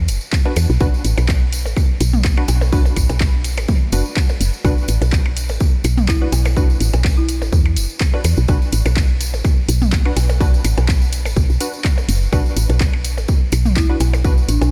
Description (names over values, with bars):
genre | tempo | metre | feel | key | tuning
minimal techno | 125 BPM | 4/4 | swing 54% on 16ths | B minor | A4 = 438 Hz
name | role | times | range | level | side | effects
woody FM bass | bass | 0.0-14.7 s | F#1 to E2 | -19 LUFS | equal | sidechain pumping
booming analog drum machine | drums | 0.1-14.7 s | handclaps, hi-hat | -31 LUFS | equal | studio reverb
tambourine | percussion | 0.1-14.7 s | none | -32 LUFS | equal | none
electronic kick drum | drums | 0.3-14.3 s | none | -18 LUFS | equal | studio reverb
wavetable chord stab | stabs | 0.5-14.3 s | D4 to B4 | -31 LUFS | equal | diffuse ambient delay
electronic percussion blips and toms | percussion | 0.5-14.7 s | none | -30 LUFS | equal | studio reverb, diffuse ambient delay
folk marimba with medium mallets | melody | 6.1-7.7, 13.8-14.7 s | D4 to E4 | -28 LUFS | equal | diffuse ambient delay
room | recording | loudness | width
little or no reverb | none | -17 LUFS | mono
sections
0.0-14.7 A section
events
none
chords
0.0 B5